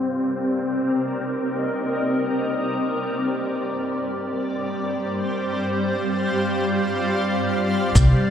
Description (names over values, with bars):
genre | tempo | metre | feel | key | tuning
ambient dub | free time | none | none | unclear | A4 = 439 Hz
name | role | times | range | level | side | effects
granular cloud pad | sustained chords | 0.0-8.3 s | G3 to F5 | -22 LUFS | equal | built-in reverb
wind-like tuned noise texture | texture | 0.0-8.0 s | C4 to C5 | -30 LUFS | right 1 dB | built-in reverb
upright bass | bass | 8.0-8.1 s | C2 | -15 LUFS | equal | none
cabasa | drums | 8.0-8.1 s | none | -28 LUFS | left 1 dB | low-pass filter on perc, low-pass filter on room
electronic kick drum | drums | 8.0-8.1 s | none | -20 LUFS | equal | none
room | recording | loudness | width
moderate echo chamber reverb, RT60 2.1 s | low-pass filter | -21 LUFS | side -9 dB against mid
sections
0.0-8.0 A section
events
filter sweep on ambient pad 0.0-8.0; filter sweep 0.0-8.0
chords
0.0 Cm9; 3.0 G7sus4